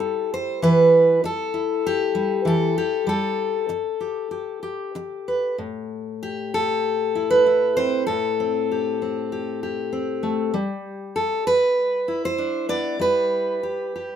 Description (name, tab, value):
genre	folk, solo fingerstyle acoustic guitar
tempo	97 BPM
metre	4/4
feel	rubato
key	A minor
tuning	A4 = 441 Hz
part	fingerpicked steel-string acoustic guitar	solo	0.0-14.2 s	A2 to D5	-20 LUFS	equal	none
room	light reverb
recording	minimal, uncompressed stereo recording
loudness	-20 LUFS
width	side -9 dB against mid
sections	0.0-5.6 A section; 5.6-14.2 B section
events	none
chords	0.0 C; 0.6 Em; 3.1 Gsus2; 5.6 Am7; 10.5 Em7/G